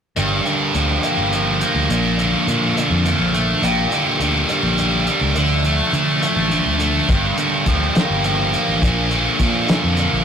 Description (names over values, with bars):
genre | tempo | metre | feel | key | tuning
indie rock | 69 BPM (dotted quarters) | 6/8 | straight | G minor | A4 = 439 Hz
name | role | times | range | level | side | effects
biting overdriven guitar | riff | 0.2-10.2 s | F3 to G4 | -23 LUFS | left 4 dB | phaser
high-gain distorted guitar | riff | 0.2-10.2 s | G2 to Bb3 | -18 LUFS | right 3 dB | distortion
fingered electric bass | bass | 0.2-10.2 s | G1 to D3 | -21 LUFS | equal | none
cloth-damped thuddy drum kit | drums | 0.2-10.1 s | hi-hat, kick drum, snare drum | -22 LUFS | equal | none
room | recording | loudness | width
light reverb | rough rehearsal-room recording, warm saturation | -15 LUFS | side -7 dB against mid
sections
0.2-10.2 A section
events
none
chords
0.2 Gm7; 1.9 Bbmaj7; 3.6 Gm/Bb; 5.4 Dm; 7.1 Gm7; 8.8 Bb